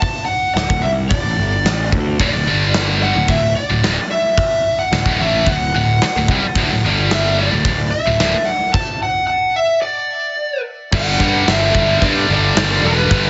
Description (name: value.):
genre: hard rock.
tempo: 110 BPM.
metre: 4/4.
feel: straight.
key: D major.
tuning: A4 = 442 Hz.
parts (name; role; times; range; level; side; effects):
lead guitar through a small cranked amp; melody; 0.0-13.3 s; B4 to A5; -21 LUFS; equal; overdrive, digital delay.
big rock drum kit; drums; 0.0-13.2 s; crash cymbal, hi-hat, kick drum, snare drum; -22 LUFS; equal; none.
fuzz picked electric bass; bass; 0.6-13.3 s; D1 to G2; -22 LUFS; equal; overdrive.
high-gain distorted guitar; riff; 2.2-13.3 s; D2 to A3; -22 LUFS; equal; distortion.
scooped high-gain guitar; riff; 2.2-13.3 s; D2 to A3; -24 LUFS; equal; distortion.
airy breathy pad; sustained chords; 10.9-13.3 s; G3 to A4; -32 LUFS; equal; none.
room: light reverb.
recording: heavily compressed radio sound, nothing above 7.8 kHz.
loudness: -16 LUFS.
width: mono.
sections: 0.0-10.9 A section; 10.9-13.3 B section.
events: stop 8.8-10.9.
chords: 0.0 D5; 2.5 G5; 3.2 D; 6.8 G5; 7.5 D5; 10.9 G5.